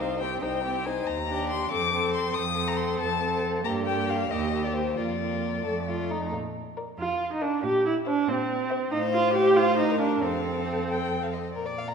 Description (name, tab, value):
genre	quick classical-period movement for string quartet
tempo	92 BPM (dotted quarters)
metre	6/8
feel	straight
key	unclear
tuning	A4 = 437 Hz
part	rich violin	melody	0.0-11.9 s	C5 to Eb6	-31 LUFS	left 7 dB	none
part	rich violin	second line	0.0-11.9 s	Eb4 to Bb5	-31 LUFS	left 4 dB	none
part	rich viola	accompaniment	0.0-11.3 s	A3 to G4	-27 LUFS	right 2 dB	none
part	rich cello	bass	0.0-11.9 s	C2 to Bb2	-33 LUFS	right 5 dB	none
room	wet scoring stage reverb, RT60 2.1 s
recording	minimal, uncompressed stereo recording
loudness	-24 LUFS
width	side -6 dB against mid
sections	0.0-6.3 A section; 6.3-11.9 B section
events	none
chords	0.0 Cm; 1.1 Ebmaj7; 1.7 F; 3.6 Gm; 4.3 Eb; 5.0 Bb/F; 5.7 F; 6.3 Bb; 7.6 C7/Bb; 8.9 F/A; 10.2 F